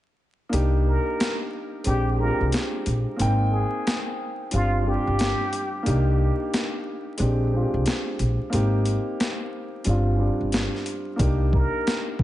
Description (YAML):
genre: hip hop, boom-bap hip-hop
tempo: 90 BPM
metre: 4/4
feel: swing 62% on 16ths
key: C minor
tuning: A4 = 440 Hz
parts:
  - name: dark grand piano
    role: accompaniment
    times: 0.5-12.2 s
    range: G3 to G5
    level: -27 LUFS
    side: equal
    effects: high-pass filter, low-pass filter
  - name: upright bass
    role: bass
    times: 0.5-11.6 s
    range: G1 to C2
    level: -23 LUFS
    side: equal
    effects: none
  - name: boom bap sampler-style drum kit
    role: drums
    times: 0.5-12.2 s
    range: hi-hat, kick drum, snare drum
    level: -27 LUFS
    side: equal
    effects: overdrive
  - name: trumpet with plunger mute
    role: melody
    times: 0.9-5.8, 11.5-12.0 s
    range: F4 to Bb4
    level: -30 LUFS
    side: equal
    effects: high-pass filter, low-pass filter, ping-pong delay
room: light reverb, studio reverb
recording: vinyl crackle, nothing above 10.7 kHz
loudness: -21 LUFS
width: side -14 dB against mid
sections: 0.5-12.2 A section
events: kick muted 0.5-11.2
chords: 0.5 Cm9; 1.9 Bb13; 3.2 Abmaj9; 4.5 G7sus4; 5.9 Cm9; 7.2 Bb13; 8.5 Abmaj9; 9.9 G7sus4; 11.2 Cm9